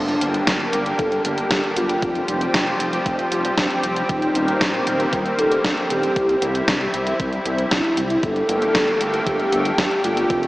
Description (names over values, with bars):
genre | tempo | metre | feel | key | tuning
synthwave | 116 BPM | 4/4 | straight | G minor | A4 = 439 Hz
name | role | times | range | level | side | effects
warm velvety synth lead | melody | 0.0-10.5 s | D4 to C5 | -23 LUFS | equal | chorus, diffuse ambient delay
lush unison pad | sustained chords | 0.0-10.5 s | D3 to G4 | -23 LUFS | equal | chorus, sidechain pumping
wide detuned saw bass | bass | 0.0-10.5 s | Eb1 to C2 | -27 LUFS | equal | chorus
gated 80s digital drum machine | drums | 0.1-10.5 s | hi-hat, snare drum | -24 LUFS | equal | gated reverb, gated reverb snare, overdrive
electronic kick drum | drums | 0.5-10.4 s | none | -28 LUFS | equal | overdrive
room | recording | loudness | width
wet huge ambient reverb, RT60 7.8 s | dreamy mix soaked in reverb, small speaker sound | -18 LUFS | side -18 dB against mid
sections
0.0-10.5 A section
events
none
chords
0.0 Gm; 2.0 Fsus2; 4.1 Eb6; 6.2 C; 8.2 Gmadd9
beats
0.47 0.99 1.51 | 2.02 2.54 3.06 3.58 | 4.09 4.61 5.13 5.64 | 6.16 6.68 7.20 7.71 | 8.23 8.75 9.27 9.78 | 10.30